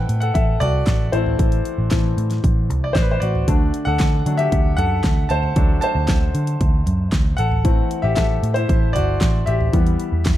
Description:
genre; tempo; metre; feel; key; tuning
piano-driven pop; 115 BPM; 4/4; straight; unclear; A4 = 441 Hz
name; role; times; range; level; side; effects
bright concert grand piano; accompaniment; 0.0-10.4 s; D3 to A5; -22 LUFS; left 2 dB; none
vintage muted picked electric bass; bass; 0.0-10.4 s; G1 to D3; -20 LUFS; equal; none
pop drum kit; drums; 0.1-10.4 s; handclaps, hi-hat, kick drum, snare drum, toms; -19 LUFS; equal; none
room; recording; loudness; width
little or no reverb; dark, warm production; -16 LUFS; side -13 dB against mid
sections
0.0-10.4 A section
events
grand piano solo 0.0-10.4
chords
0.0 Am; 3.5 D; 7.4 Am; 9.7 Em

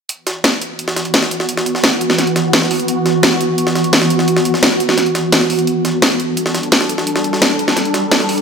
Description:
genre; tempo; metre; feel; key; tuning
dark technical drum and bass; 172 BPM; 4/4; straight; E minor; A4 = 439 Hz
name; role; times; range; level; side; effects
swarming drone; sustained chords; 0.8-8.4 s; E3 to A4; -16 LUFS; right 1 dB; built-in reverb
jungle sampler-style drum kit; drums; 0.1-8.4 s; hi-hat, snare drum; -20 LUFS; equal; high-pass filter on hats, high-pass filter on snare
electronic snare drum; drums; 0.4-8.2 s; none; -15 LUFS; equal; none
room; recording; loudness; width
wet lush hall reverb, RT60 1.8 s, digital ambience; none; -12 LUFS; side -6 dB against mid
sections
0.1-8.4 A section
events
none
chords
0.1 E5; 5.7 G5

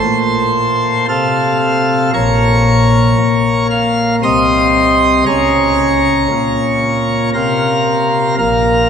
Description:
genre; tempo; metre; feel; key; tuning
classical, chorale-style piece for pipe organ; 58 BPM; 3/4; straight; Bb minor; A4 = 439 Hz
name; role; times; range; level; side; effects
pipe organ, plenum; solo; 0.0-8.9 s; Bb1 to F6; -11 LUFS; equal; none
room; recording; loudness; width
wet cathedral reverb, RT60 5.8 s; nothing above 10.5 kHz; -11 LUFS; side -7 dB against mid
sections
0.0-8.9 A section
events
none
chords
0.0 F; 2.1 Bbm; 4.2 Cm; 5.3 Bbm/Db; 8.4 Bb5

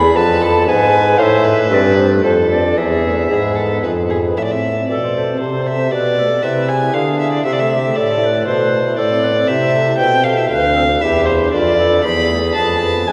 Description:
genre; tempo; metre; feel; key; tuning
classical, baroque-style sonata movement with continuo; 117 BPM; 3/4; straight; A minor; A4 = 439 Hz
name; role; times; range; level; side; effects
tenor recorder; melody; 0.0-13.1 s; F4 to B5; -23 LUFS; equal; none
rich violin; second line; 0.0-13.1 s; G#4 to B5; -20 LUFS; equal; none
pipe organ, flutes; accompaniment; 0.0-13.1 s; D2 to D5; -23 LUFS; equal; none
warm bassoon; bass; 0.0-13.1 s; D2 to D3; -19 LUFS; equal; none
room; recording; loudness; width
wet church reverb, RT60 2.9 s; dark, warm production; -15 LUFS; mono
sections
0.0-4.4 A section; 4.4-13.1 A section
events
none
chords
0.0 E; 1.2 Am; 2.2 Dm/F; 2.8 E; 4.4 Am; 5.9 E7/B; 7.5 Am; 10.5 Bdim/D; 12.0 E

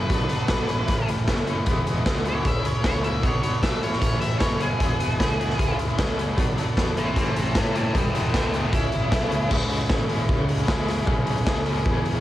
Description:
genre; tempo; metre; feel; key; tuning
indie rock; 153 BPM; 4/4; straight; unclear; A4 = 445 Hz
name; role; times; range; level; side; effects
octave-fuzz lead guitar; melody; 0.0-9.5 s; B3 to E5; -30 LUFS; equal; distortion, cassette tape, tape echo
overdriven electric guitar; riff; 0.0-12.2 s; A2 to E4; -28 LUFS; left 1 dB; tremolo
fuzz fingered electric bass; bass; 0.0-12.2 s; E1 to A2; -29 LUFS; equal; overdrive
raw garage drum kit; drums; 0.1-12.1 s; crash cymbal, hi-hat, kick drum, snare drum; -23 LUFS; equal; cassette tape
room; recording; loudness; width
studio ambience; home recording on cassette; -21 LUFS; side -14 dB against mid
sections
0.0-9.5 A section; 9.5-12.2 B section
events
lead electric guitar solo 0.0-9.5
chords
0.1 Bm; 0.7 A; 1.7 E; 2.5 C#m; 3.2 Bm; 3.8 A; 4.8 E; 5.6 C#m; 6.4 Bm; 7.0 A; 7.9 E; 8.7 C#m7

